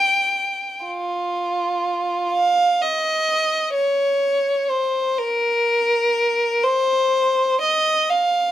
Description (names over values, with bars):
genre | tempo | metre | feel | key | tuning
classical, free, expressive piece for unaccompanied violin | 32-44 BPM (dotted quarters) | 6/8 | rubato | unclear | A4 = 443 Hz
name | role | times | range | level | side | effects
rich violin | solo | 0.0-8.5 s | F4 to G5 | -18 LUFS | equal | none
room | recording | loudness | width
light reverb | minimal, uncompressed stereo recording | -18 LUFS | side -12 dB against mid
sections
0.0-8.5 A section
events
none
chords
none